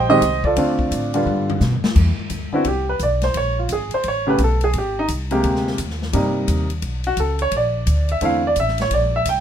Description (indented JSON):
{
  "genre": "jazz piano trio",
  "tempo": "173 BPM",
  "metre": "4/4",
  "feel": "swing 63% on 8ths",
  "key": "unclear",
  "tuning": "A4 = 440 Hz",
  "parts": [
    { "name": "clear baby grand piano", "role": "melody", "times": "0.0-9.4 s", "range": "C3 to G5", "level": "-19 LUFS", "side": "right 1 dB", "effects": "none" },
    { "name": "upright bass", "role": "bass", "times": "0.0-9.4 s", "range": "Ab1 to B2", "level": "-22 LUFS", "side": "equal", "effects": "none" },
    { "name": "swinging big-band drum kit", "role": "drums", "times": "0.2-9.4 s", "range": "crash cymbal, hi-hat, kick drum, ride cymbal, snare drum, toms", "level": "-26 LUFS", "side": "left 2 dB", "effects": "none" }
  ],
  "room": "light reverb",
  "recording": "minimal, uncompressed stereo recording",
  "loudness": "-17 LUFS",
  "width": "side -9 dB against mid",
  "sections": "0.0-2.0 A section; 2.0-9.4 B section",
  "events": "drum fill 1.3-2.0; grand piano solo 2.0-9.4",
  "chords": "0.0 Ab; 0.6 Dm7; 1.3 G7; 2.0 Cmaj9; 3.3 Absus2; 4.0 Aadd9; 4.7 Abmaj9; 6.1 Cm7; 6.8 Bsus2; 7.5 Bbmaj7#11"
}